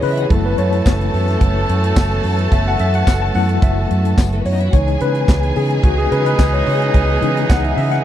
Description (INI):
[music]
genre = disco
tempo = 109 BPM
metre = 4/4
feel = straight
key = F# dorian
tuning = A4 = 439 Hz
[part]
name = rich symphonic violin section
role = second line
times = 0.0-8.0 s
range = A3 to A5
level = -25 LUFS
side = right 1 dB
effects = none
[part]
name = tine electric piano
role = accompaniment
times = 0.0-8.0 s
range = E3 to A5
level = -20 LUFS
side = left 4 dB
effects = overdrive, fast stereo tremolo
[part]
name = clear studio string section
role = sustained chords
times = 0.0-8.0 s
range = C#3 to D#5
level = -26 LUFS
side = right 2 dB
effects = none
[part]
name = fingered electric bass with an envelope filter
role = bass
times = 0.0-8.0 s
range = F#1 to C#3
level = -18 LUFS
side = equal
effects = none
[part]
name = tight funk drum kit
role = drums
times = 0.0-8.0 s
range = handclaps, hi-hat, kick drum, snare drum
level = -14 LUFS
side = equal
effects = none
[part]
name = clear horn section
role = stabs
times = 0.3-8.0 s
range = A3 to D#5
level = -24 LUFS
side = right 3 dB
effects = none
[part]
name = tambourine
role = percussion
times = 0.9-7.6 s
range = none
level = -36 LUFS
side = left 10 dB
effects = none
[sound]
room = small room ambience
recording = dry, close 1970s-style studio recording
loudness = -13 LUFS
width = side -11 dB against mid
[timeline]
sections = 0.0-8.0 A section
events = tine electric piano solo 0.0-8.0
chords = 0.3 F#m7; 4.7 C#m9